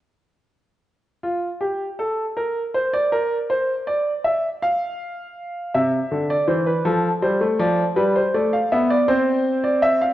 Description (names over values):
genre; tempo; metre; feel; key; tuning
classical, baroque-style two-part invention for grand piano; 54 BPM (dotted quarters); 6/8; straight; unclear; A4 = 440 Hz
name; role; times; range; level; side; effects
clear grand piano; solo; 1.2-10.1 s; C3 to F5; -19 LUFS; equal; none
room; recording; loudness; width
moderate recital hall reverb, RT60 1.7 s; worn, warbling old tape, cassette tape, warbly pitch drift, nothing above 10.4 kHz; -18 LUFS; side -14 dB against mid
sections
1.2-10.1 A section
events
none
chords
1.2 N.C.; 5.7 C; 6.9 Dm7/F; 8.0 G7; 9.1 C